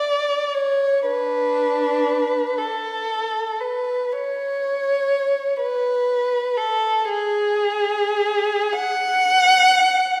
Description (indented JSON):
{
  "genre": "classical, free, expressive piece for unaccompanied violin",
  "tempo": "34-41 BPM (dotted quarters)",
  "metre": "6/8",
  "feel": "rubato",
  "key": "B dorian",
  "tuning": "A4 = 440 Hz",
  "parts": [
    { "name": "dark violin", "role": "solo", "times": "0.0-10.2 s", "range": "D4 to F#5", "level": "-20 LUFS", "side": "equal", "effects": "none" }
  ],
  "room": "wet scoring stage reverb, RT60 1.8 s",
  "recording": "recorded in a church or concert hall",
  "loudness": "-21 LUFS",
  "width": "mono",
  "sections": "0.0-10.2 A section",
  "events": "none",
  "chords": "none",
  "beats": "| 1.06 2.59 | 4.11 5.58 | 7.07 8.73"
}